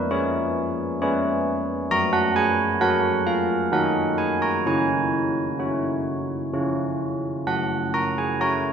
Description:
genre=classical, tune for church bells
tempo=65 BPM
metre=3/4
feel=straight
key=F# major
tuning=A4 = 440 Hz
part: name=carillon bells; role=solo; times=0.0-8.7 s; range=F#3 to A#5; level=-21 LUFS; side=right 1 dB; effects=none
room=moderate concert hall reverb, RT60 2.0 s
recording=minimal, uncompressed stereo recording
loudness=-21 LUFS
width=side -7 dB against mid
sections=0.0-8.7 A section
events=none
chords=0.0 C#7(no3); 1.9 F#; 3.7 D#m; 4.7 C#sus4; 6.5 C#; 7.5 F#5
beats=0.09 1.01 | 1.91 2.81 3.72 | 4.65 5.60 6.54 | 7.47 8.41

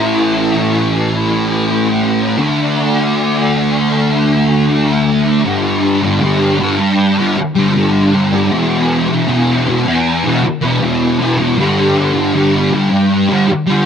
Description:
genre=rock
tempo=78 BPM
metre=4/4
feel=straight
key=G major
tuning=A4 = 440 Hz
part: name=thick fuzz guitar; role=solo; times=0.0-13.9 s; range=E2 to D4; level=-11 LUFS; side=equal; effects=distortion, ensemble chorus
room=little or no reverb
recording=dark, warm production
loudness=-11 LUFS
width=side -7 dB against mid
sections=0.0-5.5 A section; 5.5-13.9 B section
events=none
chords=0.0 A5; 2.4 D5; 5.5 G5; 8.5 E5; 11.6 G5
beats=0.09 0.85 1.62 | 2.39 3.16 3.92 4.69 | 5.46 6.22 6.99 7.75 | 8.52 9.28 10.04 10.81 | 11.57 12.34 13.10

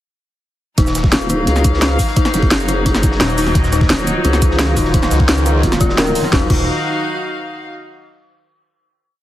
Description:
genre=dark technical drum and bass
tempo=173 BPM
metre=4/4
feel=straight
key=Eb minor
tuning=A4 = 440 Hz
part: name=dark detuned synth bell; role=arpeggios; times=0.8-6.7 s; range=Eb4 to Bb4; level=-22 LUFS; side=left 3 dB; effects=chorus, sidechain pumping, dub echo
part: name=phased detuned saw bass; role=bass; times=0.8-1.1, 3.2-6.7 s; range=Eb1 to Db2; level=-18 LUFS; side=equal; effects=phaser, tube saturation
part: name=crunchy breakbeat drum kit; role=drums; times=0.8-6.2 s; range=hi-hat, snare drum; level=-31 LUFS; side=equal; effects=none
part: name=drum and bass drum kit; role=drums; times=0.8-6.6 s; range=cabasa, crash cymbal, hi-hat, snare drum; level=-18 LUFS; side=equal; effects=overdrive
part: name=electronic kick drum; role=drums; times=0.8-6.6 s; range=none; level=-15 LUFS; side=equal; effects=overdrive
part: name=clear studio string section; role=texture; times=0.8-7.7 s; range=Gb3 to F5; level=-22 LUFS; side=left 2 dB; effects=sidechain pumping
part: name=vowel-sweep wobble bass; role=bass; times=1.1-6.3 s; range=Eb1 to Db2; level=-17 LUFS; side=equal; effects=chorus
part: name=sweeping resonant pad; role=sustained chords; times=3.6-6.5 s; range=Eb3 to F4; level=-23 LUFS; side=right 2 dB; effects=chorus, sidechain pumping
room=light reverb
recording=heavily compressed radio sound, multiband compression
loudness=-12 LUFS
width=side -14 dB against mid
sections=0.8-6.3 drop; 6.3-7.7 final chord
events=drop 0.8-6.3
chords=0.8 Ebmadd9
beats=| 0.78 1.12 1.47 1.82 | 2.17 2.51 2.86 3.21 | 3.55 3.90 4.25 4.59 | 4.94 5.29 5.63 5.98 | 6.33 6.67 7.02 7.37

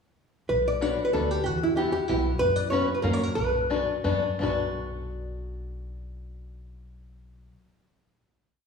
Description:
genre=musette waltz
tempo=163-194 BPM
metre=3/4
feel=straight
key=B minor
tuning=A4 = 439 Hz
part: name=archtop guitar, miked and amplified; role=melody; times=0.5-4.0 s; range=E4 to D5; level=-26 LUFS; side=right 1 dB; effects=none
part: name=upright bass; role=bass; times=0.5-7.5 s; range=B1 to F#2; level=-32 LUFS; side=equal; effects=none
part: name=open-back banjo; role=accompaniment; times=0.8-7.5 s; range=A#3 to B4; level=-28 LUFS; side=left 4 dB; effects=none
room=wet recital hall reverb, RT60 1.6 s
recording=recorded in a church or concert hall, small room reverb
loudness=-24 LUFS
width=side -5 dB against mid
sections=0.5-4.4 A section; 4.4-6.6 final chord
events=slowing down 2.4-4.4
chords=0.5 Bm; 1.5 Emadd9; 2.4 F#sus4; 3.0 F#; 3.4 Bm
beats=| 0.50 0.82 1.14 | 1.46 1.78 2.10 | 2.41 2.72 3.04 | 3.36 3.70 4.05 | 4.41 4.78 5.14 | 5.50 5.86 6.22

